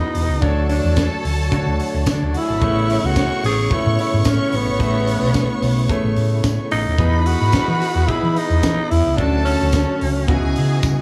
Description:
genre	disco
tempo	110 BPM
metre	4/4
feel	straight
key	unclear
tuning	A4 = 440 Hz
part	growling tenor saxophone	melody	0.0-10.5 s	B3 to G#4	-24 LUFS	equal	none
part	clear studio string section	second line	0.0-11.0 s	F#4 to C#6	-29 LUFS	equal	none
part	clear concert grand piano	accompaniment	0.0-11.0 s	C#3 to E5	-28 LUFS	equal	none
part	percussive tonewheel organ	sustained chords	0.0-11.0 s	C#3 to D#5	-30 LUFS	equal	overdrive, chorus vibrato, slow rotary speaker
part	hollow-body short-scale fingered electric bass	bass	0.1-11.0 s	D#1 to E3	-22 LUFS	equal	none
part	tight funk drum kit	drums	0.1-11.0 s	hi-hat, kick drum, snare drum, toms	-26 LUFS	equal	none
part	tambourine	percussion	1.0-11.0 s	none	-38 LUFS	equal	none
room	small room ambience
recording	none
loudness	-18 LUFS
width	mono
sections	0.0-11.0 A section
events	drum fill 10.8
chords	0.4 Dmaj7; 2.6 Amaj9; 7.0 Emaj7; 9.2 Dmaj7; 10.3 C#m11

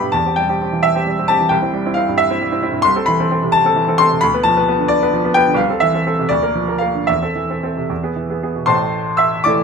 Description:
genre	classical, romantic character piece for solo piano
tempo	71-94 BPM (dotted quarters)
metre	6/8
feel	rubato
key	A minor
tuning	A4 = 440 Hz
part	bright baby grand piano	solo	0.0-9.6 s	A1 to E6	-14 LUFS	equal	none
room	moderate large studio reverb, RT60 0.9 s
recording	close, detailed microphones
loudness	-14 LUFS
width	side -5 dB against mid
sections	0.0-8.7 A section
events	none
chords	0.1 C/E; 1.5 C; 2.8 Am/C; 4.2 Bdim/D; 5.6 Am/C; 6.3 Bb/D; 7.1 Am/E; 7.9 E; 8.7 Am

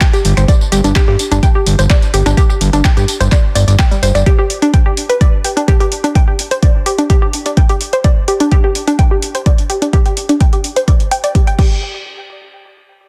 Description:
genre	progressive house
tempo	127 BPM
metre	4/4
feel	straight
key	unclear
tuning	A4 = 441 Hz
part	analog pluck	arpeggios	0.0-12.0 s	G3 to G5	-19 LUFS	equal	chorus, sidechain pumping, tape echo
part	deep house drum kit	drums	0.0-11.7 s	crash cymbal, finger snaps, handclaps, hi-hat, tambourine	-23 LUFS	equal	none
part	electronic kick drum	drums	0.0-11.7 s	none	-13 LUFS	equal	none
part	fat analog bass	bass	0.2-4.2 s	G1 to G2	-14 LUFS	equal	sidechain pumping
room	light reverb, digital ambience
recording	dense, heavily limited modern master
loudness	-12 LUFS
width	mono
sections	0.0-11.8 A section; 11.8-13.1 B section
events	none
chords	0.5 N.C.; 4.3 G5; 6.2 Dsus4; 11.6 N.C.

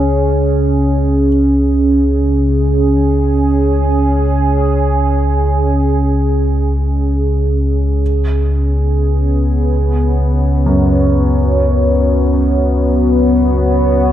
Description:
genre	dark ambient drone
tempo	free time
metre	none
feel	none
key	unclear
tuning	A4 = 441 Hz
part	deep dark ambient pad	sustained chords	0.0-14.1 s	B3 to C#5	-15 LUFS	right 1 dB	chorus, built-in reverb
part	dark grand piano	arpeggios	0.0-14.1 s	F#2 to C#4	-19 LUFS	right 2 dB	dub echo
part	deep rumbling drone	drone	0.0-14.1 s	C#2 to C#3	-14 LUFS	equal	built-in reverb
room	moderate spring reverb, RT60 2.0 s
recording	echo-heavy mix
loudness	-11 LUFS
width	side -11 dB against mid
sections	0.0-14.1 A section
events	none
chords	0.0 C#5

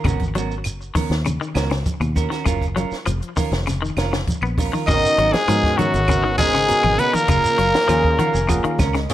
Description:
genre	afrobeat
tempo	100 BPM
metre	4/4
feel	straight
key	G# dorian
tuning	A4 = 439 Hz
part	clean electric guitar	arpeggios	0.0-9.1 s	B2 to B3	-26 LUFS	left 5 dB	tape echo
part	semi-hollow electric guitar	stabs	0.0-9.0 s	B3 to A#4	-28 LUFS	right 9 dB	none
part	fingered electric bass	bass	0.0-9.1 s	E#1 to G#2	-23 LUFS	equal	none
part	compact cocktail drum kit	drums	0.0-9.1 s	hi-hat, kick drum, snare drum	-24 LUFS	equal	none
part	claves	percussion	0.0-8.9 s	none	-35 LUFS	right 3 dB	none
part	congas	percussion	0.1-8.9 s	none	-27 LUFS	right 1 dB	none
part	shekere	percussion	0.1-9.1 s	none	-31 LUFS	right 2 dB	none
part	growling trumpet	melody	4.9-8.9 s	F#4 to D#5	-18 LUFS	left 1 dB	none
part	muted trombone section	second line	4.9-9.0 s	F#2 to D#3	-28 LUFS	left 2 dB	none
part	raspy tenor saxophone	second line	4.9-9.0 s	F#3 to D#4	-27 LUFS	right 3 dB	tape echo
part	barky tine electric piano	accompaniment	4.9-9.1 s	A#3 to G#5	-26 LUFS	right 3 dB	analog chorus
room	light reverb, studio reverb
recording	none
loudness	-17 LUFS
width	side -13 dB against mid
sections	0.0-4.9 A section; 4.9-9.1 B section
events	tine electric piano fill 7.9-9.1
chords	0.1 G#m11; 2.5 F#maj7; 4.9 G#m11; 7.3 F#maj7

